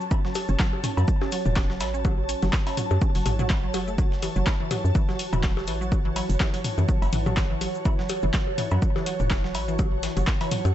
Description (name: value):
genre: minimal techno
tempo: 124 BPM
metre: 4/4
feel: swing 56% on 16ths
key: F# minor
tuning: A4 = 441 Hz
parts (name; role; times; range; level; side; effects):
- cabasa; percussion; 0.0-10.7 s; none; -45 LUFS; left 3 dB; none
- ethereal airy pad; texture; 0.0-10.7 s; F#4 to B5; -32 LUFS; right 2 dB; ensemble chorus, built-in reverb, phaser, sidechain pumping
- resonant blip pluck; riff; 0.1-10.6 s; E3 to F#4; -32 LUFS; equal; chorus, sidechain pumping, tape echo
- breakbeat sampler-style drum kit; drums; 0.1-10.6 s; hi-hat, shaker, snare drum; -42 LUFS; equal; sidechain pumping on perc, high-pass filter on perc, high-pass filter on snare, sidechain pumping on hats, high-pass filter on hats
- electronic kick drum; drums; 0.1-10.4 s; none; -24 LUFS; equal; overdrive
- electronic cowbell, percussion blips and toms; percussion; 0.1-10.7 s; none; -32 LUFS; left 2 dB; ping-pong delay
- punchy analog drum machine; drums; 0.4-10.7 s; handclaps, hi-hat; -33 LUFS; left 1 dB; overdrive
- hollow knocking FM bass; bass; 0.5-10.7 s; E1 to F#2; -26 LUFS; equal; sidechain pumping
room: digital ambience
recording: nothing above 8.0 kHz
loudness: -22 LUFS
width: side -12 dB against mid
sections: 0.0-10.7 A section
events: none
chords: 0.0 F#m